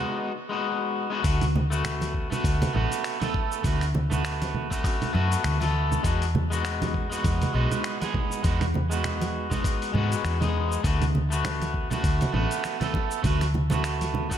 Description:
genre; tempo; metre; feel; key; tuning
sunset chillout; 100 BPM; 4/4; swing 57% on 16ths; unclear; A4 = 440 Hz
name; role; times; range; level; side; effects
electric guitar at the edge of break-up; accompaniment; 0.0-14.4 s; G#3 to A4; -28 LUFS; moving between left 6 dB and right 6 dB; auto-pan, digital delay
vintage muted fingered electric bass; bass; 0.0-14.4 s; A1 to G#2; -26 LUFS; equal; none
dusty soul sampler-style drum kit; drums; 1.2-14.4 s; cabasa, congas, finger snaps, hi-hat; -32 LUFS; right 3 dB; none
electronic kick drum; drums; 1.2-14.4 s; none; -28 LUFS; equal; none
congas; percussion; 1.6-14.3 s; none; -32 LUFS; right 2 dB; none
room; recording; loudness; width
light reverb, digital ambience; none; -23 LUFS; side -10 dB against mid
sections
0.0-1.2 A section; 1.2-14.4 A section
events
break 0.0-1.2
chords
0.0 Emaj9 (rootless); 1.2 D6; 6.0 Emaj9; 10.8 D6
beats
0.04 0.64 | 1.24 1.84 2.44 3.04 | 3.64 4.24 4.84 5.44 | 6.04 6.64 7.24 7.84 | 8.44 9.04 9.64 10.24 | 10.84 11.44 12.04 12.64 | 13.24 13.84

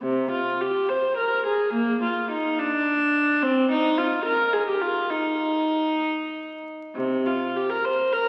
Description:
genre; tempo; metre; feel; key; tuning
classical, baroque-style suite movement for unaccompanied viola; 61-72 BPM (dotted quarters); 6/8; rubato; C minor, Eb major from 3.4 s; A4 = 440 Hz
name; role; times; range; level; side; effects
warm viola; solo; 0.0-8.3 s; C3 to C5; -24 LUFS; equal; none
room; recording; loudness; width
wet church reverb, RT60 2.7 s; very old 78 rpm record, vinyl crackle; -24 LUFS; mono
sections
0.0-7.0 A section; 7.0-8.3 A section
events
none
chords
none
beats
| 0.03 0.89 | 1.74 2.57 | 3.42 4.25 | 5.11 6.02 | 6.96 7.83

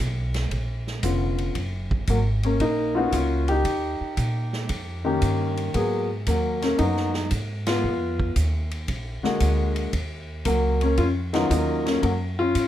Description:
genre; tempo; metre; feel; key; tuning
jazz piano trio; 115 BPM; 4/4; swing 68% on 8ths; Eb minor; A4 = 437 Hz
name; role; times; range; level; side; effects
upright bass; bass; 0.0-12.7 s; F1 to Bb2; -25 LUFS; right 1 dB; none
swinging big-band drum kit; drums; 0.3-12.7 s; hi-hat, kick drum, ride cymbal, snare drum; -32 LUFS; right 2 dB; none
warm grand piano; melody; 1.0-12.7 s; D3 to Ab4; -24 LUFS; left 2 dB; plate reverb
room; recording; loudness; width
light reverb; dark, warm production; -22 LUFS; side -12 dB against mid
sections
0.0-12.7 A section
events
band accent 7.6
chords
0.0 Db7b9; 1.6 Gbmaj7; 3.7 Eb7; 5.7 Abm9; 7.8 Ebsus2; 8.9 Bbaug7; 9.9 Ebm9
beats
0.51 1.03 | 1.56 2.08 2.60 3.13 | 3.65 4.17 4.70 5.22 | 5.75 6.27 6.79 7.32 | 7.84 8.36 8.89 9.41 | 9.94 10.46 10.98 11.51 | 12.03 12.55

